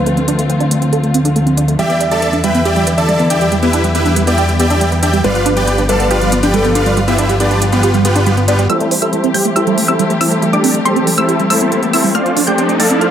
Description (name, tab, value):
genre	uplifting trance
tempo	139 BPM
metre	4/4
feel	straight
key	A minor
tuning	A4 = 444 Hz
part	dark grand piano	second line	0.0-6.9 s	A4 to E5	-20 LUFS	left 2 dB	tape echo
part	dark symphonic string section	sustained chords	0.0-13.1 s	D3 to A4	-19 LUFS	left 1 dB	low-pass filter
part	fat analog bass	bass	0.0-8.7 s	G1 to E2	-16 LUFS	equal	none
part	tight sequenced synth	arpeggios	0.1-13.1 s	G3 to A4	-18 LUFS	right 3 dB	chorus, phaser, digital delay
part	electronic hi-hat	drums	0.1-13.1 s	none	-21 LUFS	right 1 dB	high-pass filter on hats
part	supersaw chords	melody	1.8-13.1 s	B3 to B5	-16 LUFS	equal	low-pass filter, digital delay
part	wide unison pluck	second line	8.7-13.1 s	C6 to A6	-20 LUFS	left 1 dB	none
part	riser	sound effects	10.9-13.1 s	none	-22 LUFS	right 1 dB	none
room	light reverb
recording	none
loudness	-11 LUFS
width	side -9 dB against mid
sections	0.0-8.7 A section; 8.7-13.1 B section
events	filter sweep on synth arpeggio sound 0.0-8.7; build-up 8.7-13.1; filter sweep on supersaw synth 8.7-13.1; riser 10.9-13.1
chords	0.0 Dm7; 1.8 Em7; 5.2 G7; 8.7 Am7; 12.2 Dm7